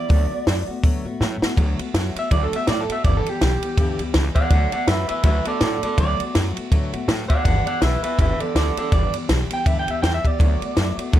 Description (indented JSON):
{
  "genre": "rockabilly",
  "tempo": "163 BPM",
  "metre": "4/4",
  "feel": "swing 58% on 8ths",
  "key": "D major",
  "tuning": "A4 = 440 Hz",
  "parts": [
    { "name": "electric guitar through a small old amp", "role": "melody", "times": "0.0-11.0 s", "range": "G4 to G5", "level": "-24 LUFS", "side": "right 2 dB", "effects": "tape echo" },
    { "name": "picked steel-string acoustic guitar", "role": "accompaniment", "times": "0.0-11.2 s", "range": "G2 to G4", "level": "-28 LUFS", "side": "left 4 dB", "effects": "none" },
    { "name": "upright bass", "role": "bass", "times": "0.1-11.2 s", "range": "G1 to A2", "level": "-23 LUFS", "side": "equal", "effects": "none" },
    { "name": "compact cocktail drum kit", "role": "drums", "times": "0.1-11.2 s", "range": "hi-hat, kick drum, ride cymbal, snare drum", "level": "-21 LUFS", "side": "equal", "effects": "none" }
  ],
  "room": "light reverb",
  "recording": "none",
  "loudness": "-18 LUFS",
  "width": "side -12 dB against mid",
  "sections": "0.0-1.6 A section; 1.6-11.2 B section",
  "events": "drum fill 1.2-1.6; clean electric guitar solo 1.6-11.2",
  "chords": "0.1 D6; 3.0 G6; 4.5 D6; 7.5 G6; 10.4 D6"
}